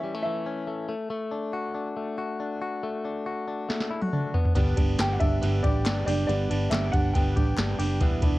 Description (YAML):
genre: jangly indie pop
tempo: 139 BPM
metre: 4/4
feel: straight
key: unclear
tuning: A4 = 440 Hz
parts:
  - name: warm upright piano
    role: melody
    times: 0.0-0.8, 5.0-7.5 s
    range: D5 to G5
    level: -32 LUFS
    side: equal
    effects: cassette tape, tape echo
  - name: direct-recorded clean electric guitar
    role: arpeggios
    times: 0.0-8.4 s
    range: E3 to G4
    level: -31 LUFS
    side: left 3 dB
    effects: cassette tape
  - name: soft vintage rhythm box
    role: drums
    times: 3.7-8.3 s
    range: hi-hat, kick drum, ride cymbal, snare drum, toms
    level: -26 LUFS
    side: equal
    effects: cassette tape
  - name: picked steel-string acoustic guitar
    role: accompaniment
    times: 4.5-8.4 s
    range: G2 to B4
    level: -30 LUFS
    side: right 5 dB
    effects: cassette tape
  - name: vintage muted fingered electric bass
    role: bass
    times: 4.6-8.4 s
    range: E1 to A1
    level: -27 LUFS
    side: equal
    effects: none
  - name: group handclap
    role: percussion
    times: 5.0-7.7 s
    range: none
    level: -37 LUFS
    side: left 4 dB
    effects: none
room: little or no reverb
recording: home recording on cassette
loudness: -24 LUFS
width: side -18 dB against mid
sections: 0.0-8.4 A section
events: drum fill 3.7-4.6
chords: 0.0 A; 0.9 D; 4.3 G